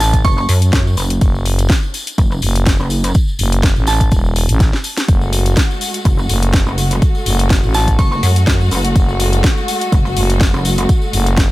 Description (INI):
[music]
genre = bass house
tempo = 124 BPM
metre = 4/4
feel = swing 55% on 16ths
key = F# minor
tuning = A4 = 437 Hz
[part]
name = glassy synth bell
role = melody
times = 0.0-0.4, 3.9-4.0, 7.7-8.2 s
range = A5 to C#6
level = -22 LUFS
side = right 2 dB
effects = chorus, tape echo
[part]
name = growling FM bass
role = bass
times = 0.0-11.5 s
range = E1 to A1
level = -15 LUFS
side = equal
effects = sidechain pumping
[part]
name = house drum kit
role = drums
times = 0.0-11.5 s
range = hi-hat, snare drum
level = -21 LUFS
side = left 1 dB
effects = overdrive
[part]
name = tambourine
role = percussion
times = 0.0-11.5 s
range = none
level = -27 LUFS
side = left 2 dB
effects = none
[part]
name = electronic kick drum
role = drums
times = 0.1-11.5 s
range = none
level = -14 LUFS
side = equal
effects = overdrive
[part]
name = pulsing pluck wobble bass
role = bass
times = 0.2-3.1, 6.1-10.9 s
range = F#1 to F#2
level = -15 LUFS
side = equal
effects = chorus, tube saturation, sidechain pumping
[part]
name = warm studio string section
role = sustained chords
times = 5.1-11.5 s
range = G#3 to F#4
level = -22 LUFS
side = equal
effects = sidechain pumping
[sound]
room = digital ambience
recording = none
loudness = -12 LUFS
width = side -18 dB against mid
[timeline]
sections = 0.0-11.5 A section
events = drum fill 4.6-5.1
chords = 0.0 F#madd9